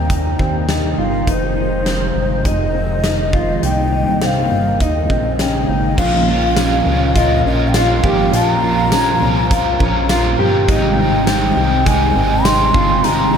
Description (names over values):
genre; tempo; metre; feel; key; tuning
dream pop; 102 BPM; 4/4; straight; unclear; A4 = 440 Hz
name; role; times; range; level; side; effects
breathy mellow bansuri; melody; 0.0-13.4 s; C5 to C6; -19 LUFS; equal; analog delay
string machine, cellos; sustained chords; 0.0-13.4 s; Bb2 to C5; -20 LUFS; equal; phaser, ensemble chorus
mellow electric guitar; arpeggios; 0.0-13.4 s; C4 to G4; -21 LUFS; left 2 dB; lush chorus, analog delay
chorused synth bass; bass; 0.0-13.4 s; F1 to Eb2; -20 LUFS; equal; none
huge arena drum kit; drums; 0.1-13.2 s; crash cymbal, hi-hat, kick drum, snare drum, tambourine; -21 LUFS; equal; none
overdriven semi-hollow guitar; accompaniment; 6.0-13.4 s; Bb2 to Bb4; -22 LUFS; right 5 dB; harmonic tremolo, lush chorus
room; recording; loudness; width
moderate huge ambient reverb, RT60 9.2 s; dreamy mix soaked in reverb; -13 LUFS; side -7 dB against mid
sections
0.0-6.0 A section; 6.0-13.4 B section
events
none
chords
0.0 Abmaj7 (rootless); 1.3 Fm7; 3.6 Cm7; 4.8 Eb7sus4; 6.0 Bbm; 10.7 Abmaj7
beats
0.10 0.69 | 1.28 1.86 2.45 3.04 | 3.63 4.22 4.80 5.39 | 5.98 6.57 7.16 7.75 | 8.33 8.92 9.51 10.10 | 10.69 11.28 11.86 12.45 | 13.04